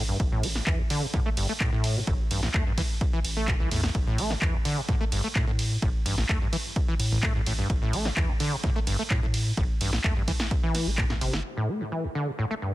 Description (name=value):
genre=acid house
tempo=128 BPM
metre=4/4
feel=straight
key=A minor pentatonic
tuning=A4 = 440 Hz
part: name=acid bass, saw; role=riff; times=0.0-12.7 s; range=A1 to A3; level=-29 LUFS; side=equal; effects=overdrive, analog chorus, sidechain pumping, digital delay
part: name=round analog bass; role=bass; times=0.0-11.4 s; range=G1 to A2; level=-30 LUFS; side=equal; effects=sidechain pumping
part: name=electronic kick drum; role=drums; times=0.2-11.1 s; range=none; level=-27 LUFS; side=equal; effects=none
part: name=punchy analog drum machine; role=drums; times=0.2-11.5 s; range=crash cymbal, handclaps, hi-hat, ride cymbal, snare drum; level=-31 LUFS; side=right 1 dB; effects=low-pass filter on snare, low-pass filter on cymbals, low-pass filter on hats
room=digital ambience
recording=dense, heavily limited modern master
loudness=-24 LUFS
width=side -16 dB against mid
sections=0.0-11.4 A section; 11.4-12.7 B section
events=drop 0.0-11.4; drum fill 11.0-11.4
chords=0.0 A5